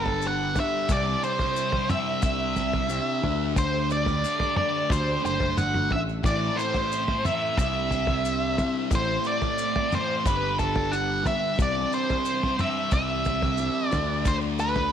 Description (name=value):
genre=psychedelic rock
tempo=90 BPM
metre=4/4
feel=straight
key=unclear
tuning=A4 = 440 Hz
part: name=octave-fuzz lead guitar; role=melody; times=0.0-14.9 s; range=A4 to F#5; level=-26 LUFS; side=equal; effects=distortion, slapback echo
part: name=string machine, full ensemble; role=sustained chords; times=0.0-14.9 s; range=E3 to G4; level=-38 LUFS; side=right 9 dB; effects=ensemble chorus
part: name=thick fuzz guitar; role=riff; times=0.0-14.9 s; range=G2 to D4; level=-29 LUFS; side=equal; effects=distortion, phaser
part: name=picked electric bass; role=bass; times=0.0-14.9 s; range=F#1 to D2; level=-30 LUFS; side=equal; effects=none
part: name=cloth-damped thuddy drum kit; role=drums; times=0.1-14.9 s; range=kick drum, toms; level=-28 LUFS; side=equal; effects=none
part: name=maracas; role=percussion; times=0.2-14.8 s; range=none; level=-44 LUFS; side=left 14 dB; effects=none
room=light reverb, studio reverb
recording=1960s-style stereo with parts hard left and right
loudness=-23 LUFS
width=side -9 dB against mid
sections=0.0-14.9 A section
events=none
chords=0.0 G; 0.9 Cadd9; 3.2 Dsus4; 6.2 Am; 7.6 Cadd9; 8.9 Am; 10.3 G; 11.6 Cadd9; 13.9 Dsus4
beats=0.22 | 0.89 1.56 2.23 2.90 | 3.56 4.23 4.90 5.57 | 6.24 6.91 7.58 8.25 | 8.92 9.59 10.26 10.93 | 11.60 12.26 12.93 13.60 | 14.27